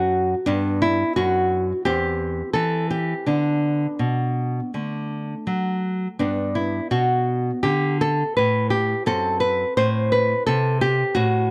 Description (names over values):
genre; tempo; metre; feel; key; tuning
classical, baroque-style dance for nylon-string guitar; 84 BPM; 4/4; uneven beats, rubato; G major; A4 = 440 Hz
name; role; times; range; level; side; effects
nylon-string guitar; solo; 0.0-11.5 s; E2 to C5; -22 LUFS; equal; none
room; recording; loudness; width
light reverb; close, detailed microphones; -22 LUFS; mono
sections
0.0-11.5 A section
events
none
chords
0.5 G; 1.9 C/E; 3.3 Bm; 4.7 D; 6.2 G; 9.1 F#dim